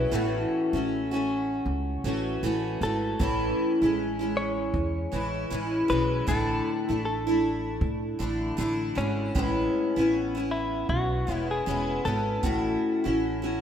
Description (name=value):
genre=acoustic pop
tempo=78 BPM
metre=4/4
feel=swing 60% on 16ths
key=A major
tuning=A4 = 441 Hz
part: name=direct-recorded clean electric guitar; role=melody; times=0.0-13.6 s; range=C#4 to C#5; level=-33 LUFS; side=left 1 dB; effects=none
part: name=picked steel-string acoustic guitar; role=accompaniment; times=0.0-13.6 s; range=A2 to G#4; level=-26 LUFS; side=equal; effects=double-tracked left and right
part: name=upright bass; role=bass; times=0.0-13.6 s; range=E1 to A2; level=-32 LUFS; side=right 1 dB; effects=none
part: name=kick drum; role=drums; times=3.2-12.6 s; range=none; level=-32 LUFS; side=right 1 dB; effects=none
room=moderate lush hall reverb, RT60 2.4 s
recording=rough home demo mix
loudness=-25 LUFS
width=side -9 dB against mid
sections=0.0-13.6 A section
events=none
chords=0.1 F#m7/A; 3.2 Amaj7; 6.3 Dsus2/A; 9.4 E6/A; 12.4 F#m7/A